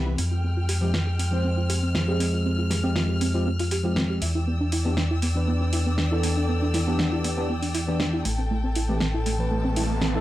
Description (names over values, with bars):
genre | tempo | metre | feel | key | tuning
nu-disco, nu disco | 119 BPM | 4/4 | straight | unclear | A4 = 440 Hz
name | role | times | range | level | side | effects
tine electric piano | accompaniment | 0.0-10.2 s | E3 to C5 | -29 LUFS | equal | lush chorus, tape echo
rich studio string section | sustained chords | 0.0-10.2 s | Ab3 to F6 | -34 LUFS | left 2 dB | none
chorused synth bass | bass | 0.0-10.2 s | A1 to F2 | -25 LUFS | equal | none
soft round pluck | arpeggios | 0.1-10.2 s | A3 to E5 | -30 LUFS | right 2 dB | chorus, vintage 12-bit sampler grit, tape echo
pop drum kit | drums | 0.2-10.1 s | hi-hat, snare drum | -29 LUFS | equal | small room ambience
riser | sound effects | 9.2-10.2 s | none | -35 LUFS | right 1 dB | none
room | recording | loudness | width
little or no reverb | dry, gritty hardware recording, transformer saturation | -22 LUFS | side -15 dB against mid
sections
0.0-10.2 A section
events
riser 9.2-10.2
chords
0.2 Fmadd9; 4.2 Em7; 8.3 Am7